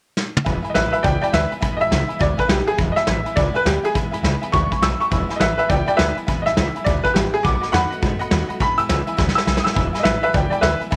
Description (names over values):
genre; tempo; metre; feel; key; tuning
rockabilly; 206 BPM; 4/4; swing 63% on 8ths; E mixolydian; A4 = 440 Hz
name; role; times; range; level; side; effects
vintage brush drum kit; drums; 0.2-11.0 s; hi-hat, kick drum, snare drum, toms; -24 LUFS; equal; none
honky-tonk upright piano; accompaniment; 0.4-11.0 s; D#5 to B5; -32 LUFS; equal; none
picked steel-string acoustic guitar; accompaniment; 0.5-11.0 s; E2 to F#4; -31 LUFS; equal; none
upright bass; bass; 0.5-11.0 s; E1 to G#2; -26 LUFS; equal; none
bright upright piano; melody; 0.7-10.8 s; G4 to E6; -22 LUFS; equal; none
room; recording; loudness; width
light reverb, small room ambience; none; -19 LUFS; mono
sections
0.5-9.8 A section; 9.8-11.0 A section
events
drum fill 0.2, 9.2-9.8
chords
0.5 E; 7.4 B7; 8.6 E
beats
0.17 | 0.46 0.75 1.04 1.33 | 1.62 1.91 2.20 2.49 | 2.78 3.07 3.37 3.66 | 3.95 4.24 4.53 4.82 | 5.11 5.40 5.69 5.98 | 6.28 6.57 6.86 7.15 | 7.44 7.73 8.02 8.31 | 8.60 8.89 9.18 9.47 | 9.76 10.05 10.34 10.63 | 10.92